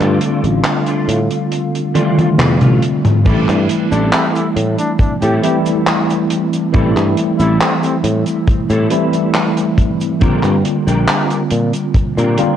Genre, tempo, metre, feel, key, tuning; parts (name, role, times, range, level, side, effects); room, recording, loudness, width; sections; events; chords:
vaporwave; 69 BPM; 4/4; straight; A phrygian; A4 = 440 Hz
bright tine electric piano; accompaniment; 0.0-12.6 s; D3 to F4; -16 LUFS; equal; medium stereo tremolo, wide subtle chorus, vintage 12-bit sampler grit, tape echo
warbly tape-like pad; sustained chords; 0.0-3.2 s; D4 to C6; -28 LUFS; right 3 dB; chorus, built-in reverb
clean electric guitar; riff; 0.0-12.6 s; A3 to Bb4; -24 LUFS; left 1 dB; ensemble chorus, tape echo
sustaining fretless electric bass; bass; 0.0-12.4 s; A1 to Bb2; -16 LUFS; equal
modern studio drum kit; drums; 0.0-12.6 s; cabasa, crash cymbal, handclaps, hi-hat, toms; -18 LUFS; equal; vintage 12-bit sampler grit, gated reverb
kick drum; drums; 3.3-12.1 s; -16 LUFS; equal; vintage 12-bit sampler grit
clear flugelhorn; melody; 3.9-8.0 s; C4 to G4; -24 LUFS; right 1 dB; tape echo
light reverb, small room ambience; cassette tape; -12 LUFS; side -10 dB against mid
0.0-3.3 A section; 3.3-12.6 B section
kick drops out 1.5-3.3; drum fill 2.0-3.3
0.0 F6/A; 3.3 Am7; 10.2 Bb69